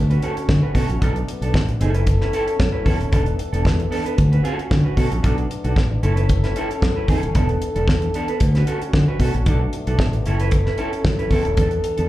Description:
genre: disco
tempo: 114 BPM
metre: 4/4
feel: straight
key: unclear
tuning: A4 = 440 Hz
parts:
  - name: mellow French horn section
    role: sustained chords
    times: 0.0-12.1 s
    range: D3 to A4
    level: -27 LUFS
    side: left 2 dB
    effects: plate reverb
  - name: fingered electric bass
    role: bass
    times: 0.0-12.1 s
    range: D#1 to D3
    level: -19 LUFS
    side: equal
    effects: none
  - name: mellow electric guitar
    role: accompaniment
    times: 0.1-12.1 s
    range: B3 to B4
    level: -26 LUFS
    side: right 3 dB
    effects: plate reverb, slapback echo
  - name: damped 70s drum kit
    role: drums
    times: 0.1-12.1 s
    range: hi-hat, kick drum, snare drum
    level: -20 LUFS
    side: equal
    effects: none
room: light reverb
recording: live gig heard through the venue's PA, club reverb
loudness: -17 LUFS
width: side -15 dB against mid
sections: 0.0-12.1 A section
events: none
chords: 0.0 Dmaj7; 1.0 Bm7; 1.8 F#m7; 3.1 E7sus4; 4.2 Dmaj7; 5.2 Bm7; 6.0 F#m7; 7.4 E7sus4; 8.4 Dmaj7; 9.5 Bm7; 10.3 F#m7; 11.6 E7sus4

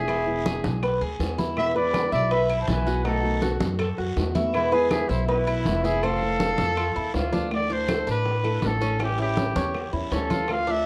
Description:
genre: latin, Cuban son and guajira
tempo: 162 BPM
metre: 4/4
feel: straight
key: A minor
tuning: A4 = 440 Hz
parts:
  - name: warm trumpet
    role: melody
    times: 0.0-10.9 s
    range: E4 to F5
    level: -30 LUFS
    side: equal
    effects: none
  - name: breathy bright jazz flute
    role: second line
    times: 0.0-7.1 s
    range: B4 to B5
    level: -36 LUFS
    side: equal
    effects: none
  - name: nylon-string guitar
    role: accompaniment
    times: 0.0-10.9 s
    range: B2 to F#4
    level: -33 LUFS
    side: equal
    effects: none
  - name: Cuban tres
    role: arpeggios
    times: 0.0-10.9 s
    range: C4 to E5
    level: -30 LUFS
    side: equal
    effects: none
  - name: upright bass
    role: bass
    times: 0.0-10.9 s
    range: E1 to F#2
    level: -31 LUFS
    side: equal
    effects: none
  - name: bongos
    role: percussion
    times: 0.1-10.9 s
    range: none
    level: -37 LUFS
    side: equal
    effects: none
  - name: claves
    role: percussion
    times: 0.1-10.7 s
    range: none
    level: -41 LUFS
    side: equal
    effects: none
  - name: congas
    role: percussion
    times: 0.1-10.9 s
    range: none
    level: -33 LUFS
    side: equal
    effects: none
  - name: guiro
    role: percussion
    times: 0.1-10.9 s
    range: none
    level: -45 LUFS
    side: equal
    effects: none
room: moderate studio ambience, RT60 0.5 s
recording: worn, warbling old tape, cassette tape, warbly pitch drift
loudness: -24 LUFS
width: mono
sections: 0.0-7.5 A section; 7.5-10.9 B section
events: none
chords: 0.1 E; 3.1 B7; 4.5 E; 6.0 Fmaj7; 7.5 Dsus2; 9.0 A7

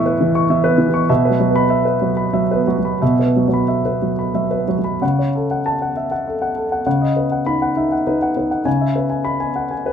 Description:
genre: neoclassical minimalist piano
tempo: 86-102 BPM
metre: 3/4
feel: rubato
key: unclear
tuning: A4 = 442 Hz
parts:
  - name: warm grand piano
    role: solo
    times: 0.0-9.9 s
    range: A2 to C#6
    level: -15 LUFS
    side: equal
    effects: none
room: moderate studio reverb, RT60 0.8 s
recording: dark, warm production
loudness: -15 LUFS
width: side -8 dB against mid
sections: 0.0-5.0 A section; 5.0-9.9 B section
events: none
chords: 0.0 Aadd9; 1.1 Bsus4; 5.0 F#m/C#; 6.9 B/C#; 8.7 C#m7

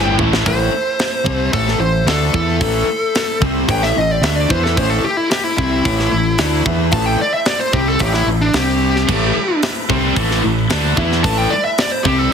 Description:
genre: hard rock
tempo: 111 BPM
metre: 4/4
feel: straight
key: A minor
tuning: A4 = 443 Hz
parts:
  - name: smooth overdriven lead guitar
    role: melody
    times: 0.0-12.3 s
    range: D4 to A5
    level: -19 LUFS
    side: left 1 dB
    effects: none
  - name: overdriven tonewheel organ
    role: sustained chords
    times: 0.0-12.3 s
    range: A3 to D5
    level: -29 LUFS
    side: right 1 dB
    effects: none
  - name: high-gain distorted guitar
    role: riff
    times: 0.0-0.4, 9.1-12.3 s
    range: A2 to E4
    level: -21 LUFS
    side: right 1 dB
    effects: distortion
  - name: overdriven electric guitar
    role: riff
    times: 0.0-12.3 s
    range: A2 to E4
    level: -19 LUFS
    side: left 2 dB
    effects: none
  - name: growling fingered electric bass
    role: bass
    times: 0.0-12.3 s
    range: G1 to E2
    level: -19 LUFS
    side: right 1 dB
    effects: overdrive
  - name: tight metal drum kit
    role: drums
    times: 0.2-12.2 s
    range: crash cymbal, hi-hat, kick drum, snare drum, toms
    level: -21 LUFS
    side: equal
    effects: none
room: light reverb, small room ambience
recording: heavily compressed radio sound, multiband compression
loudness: -14 LUFS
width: side -7 dB against mid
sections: 0.5-12.3 A section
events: drum fill 0.0-0.5; lead electric guitar solo 0.5-12.3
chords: 0.5 Am; 8.5 C5; 9.1 Am

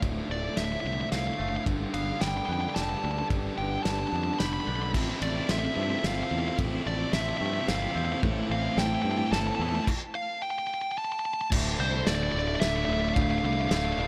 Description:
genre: post-rock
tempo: 110 BPM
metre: 3/4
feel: straight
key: D dorian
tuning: A4 = 440 Hz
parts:
  - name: pedal harmonium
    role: sustained chords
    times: 0.0-14.1 s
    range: D3 to A5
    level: -47 LUFS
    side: equal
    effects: none
  - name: twangy electric guitar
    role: arpeggios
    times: 0.0-14.1 s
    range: D2 to A4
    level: -38 LUFS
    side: equal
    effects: phaser, digital delay
  - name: distorted electric guitar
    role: riff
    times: 0.0-14.1 s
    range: D2 to E4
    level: -36 LUFS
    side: equal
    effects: distortion
  - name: growling fingered electric bass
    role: bass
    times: 0.0-14.1 s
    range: D1 to G2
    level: -35 LUFS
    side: equal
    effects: overdrive
  - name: loose indie drum kit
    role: drums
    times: 0.0-13.8 s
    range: crash cymbal, kick drum, ride cymbal, snare drum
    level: -35 LUFS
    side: equal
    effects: none
  - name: nasal lead guitar with a parked wah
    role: melody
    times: 0.3-14.1 s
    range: C5 to B5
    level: -34 LUFS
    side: equal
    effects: overdrive, digital delay
  - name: sludgy distorted guitar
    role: riff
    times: 4.9-9.9 s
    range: C4 to A4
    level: -41 LUFS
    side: equal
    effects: overdrive
room: light reverb, small room ambience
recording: none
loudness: -29 LUFS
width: mono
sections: 0.0-11.5 A section; 11.5-14.1 B section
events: build-up 0.0-11.5; stop 9.9-11.5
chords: 0.0 Dmadd9; 1.7 Gadd9; 4.9 Fmaj7; 8.2 Am7; 11.5 Dmadd9

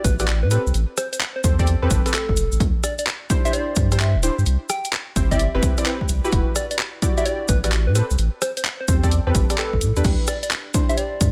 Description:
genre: UK garage, two-step garage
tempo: 129 BPM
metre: 4/4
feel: swing 66% on 16ths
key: A dorian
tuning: A4 = 440 Hz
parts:
  - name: soft struck synth lead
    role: melody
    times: 0.0-11.3 s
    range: A4 to G5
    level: -30 LUFS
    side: equal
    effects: chorus, delay
  - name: deep mellow chord stab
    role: stabs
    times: 0.0-11.3 s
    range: C4 to D5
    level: -29 LUFS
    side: equal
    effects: analog chorus
  - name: saturated sub bass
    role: bass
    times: 0.0-11.3 s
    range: D1 to A2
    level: -22 LUFS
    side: equal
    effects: none
  - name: electronic kick drum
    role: drums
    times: 0.0-11.3 s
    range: none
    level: -24 LUFS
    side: equal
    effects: studio reverb
  - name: garage drum kit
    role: drums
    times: 0.0-11.3 s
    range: crash cymbal, handclaps, hi-hat, rim click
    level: -28 LUFS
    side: equal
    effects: studio reverb
  - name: cabasa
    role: percussion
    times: 0.0-11.3 s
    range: none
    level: -33 LUFS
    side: equal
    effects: none
room: little or no reverb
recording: none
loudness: -21 LUFS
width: mono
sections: 0.0-11.3 A section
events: none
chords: 0.0 Em9; 0.5 Am9; 2.6 D9sus4; 4.5 Cmaj7; 6.3 Em9; 8.0 Am9; 10.0 D9sus4

